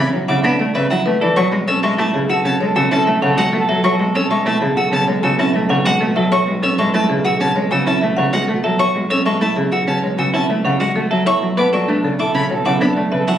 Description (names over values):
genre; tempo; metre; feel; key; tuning
classical, minimalist pattern music; 97 BPM; 4/4; straight; unclear; A4 = 439 Hz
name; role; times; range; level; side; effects
buzzing marimba with hard mallets; melody; 0.0-13.3 s; G#4 to G#5; -23 LUFS; left 3 dB; none
warm cello; accompaniment; 0.0-13.4 s; C#3 to C#4; -19 LUFS; equal; none
clean electric guitar; arpeggios; 0.0-13.4 s; C#4 to C#5; -21 LUFS; right 4 dB; none
rich violin; arpeggios; 0.0-13.4 s; E5 to E6; -22 LUFS; left 2 dB; none
warm studio double bass section; bass; 0.0-13.4 s; B1; -23 LUFS; right 2 dB; none
mellow soprano saxophone; second line; 1.4-6.1, 11.3-13.4 s; A4; -23 LUFS; right 1 dB; none
room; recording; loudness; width
wet recital hall reverb, RT60 1.7 s; recorded on a phone in the room, club reverb, compression; -14 LUFS; side -10 dB against mid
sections
0.0-13.4 A section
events
none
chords
0.0 Bm9; 1.4 F#madd9/B; 11.3 Bm9